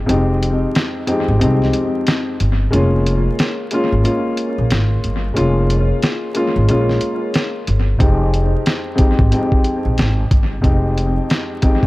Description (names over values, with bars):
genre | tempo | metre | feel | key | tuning
hip hop, boom-bap hip-hop | 91 BPM | 4/4 | swing 60% on 16ths | F minor | A4 = 440 Hz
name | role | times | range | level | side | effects
upright bass | bass | 0.0-11.9 s | F1 to C2 | -16 LUFS | equal | none
dark concert grand piano | accompaniment | 0.1-11.9 s | F2 to G4 | -18 LUFS | left 1 dB | cassette tape, high-pass filter, low-pass filter, analog delay
lo-fi sampler-style drum kit | drums | 0.1-11.9 s | hi-hat, kick drum, snare drum | -18 LUFS | equal | analog delay
room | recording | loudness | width
studio ambience | echo-heavy mix, vinyl crackle | -14 LUFS | side -19 dB against mid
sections
0.0-11.9 A section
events
break 0.0-8.0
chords
0.0 Fm9; 2.7 Bbm7/F; 8.0 Fm9